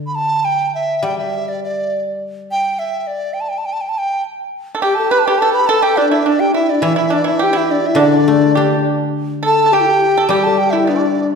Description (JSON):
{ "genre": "chinese traditional, Chinese chamber ensemble", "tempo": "104 BPM", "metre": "2/4", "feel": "rubato", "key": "G gong mode", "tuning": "A4 = 440 Hz", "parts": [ { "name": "guzheng", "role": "accompaniment", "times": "0.0-2.8, 6.8-11.4 s", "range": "D3 to D4", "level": "-20 LUFS", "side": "left 2 dB", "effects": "none" }, { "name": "hollow large dizi", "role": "melody", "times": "0.1-11.3 s", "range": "D5 to B5", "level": "-17 LUFS", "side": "right 2 dB", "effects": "none" }, { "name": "pipa", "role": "second line", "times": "4.7-11.3 s", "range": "D4 to B4", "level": "-18 LUFS", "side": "right 4 dB", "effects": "none" }, { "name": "breathy mellow low xiao", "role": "second line", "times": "4.8-11.3 s", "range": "D4 to B4", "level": "-16 LUFS", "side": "left 4 dB", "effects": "none" } ], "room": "wet concert hall reverb, RT60 1.7 s", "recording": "heard from further back in the room", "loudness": "-13 LUFS", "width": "side -5 dB against mid", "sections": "0.0-4.5 A section; 4.5-11.4 B section", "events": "none", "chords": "none" }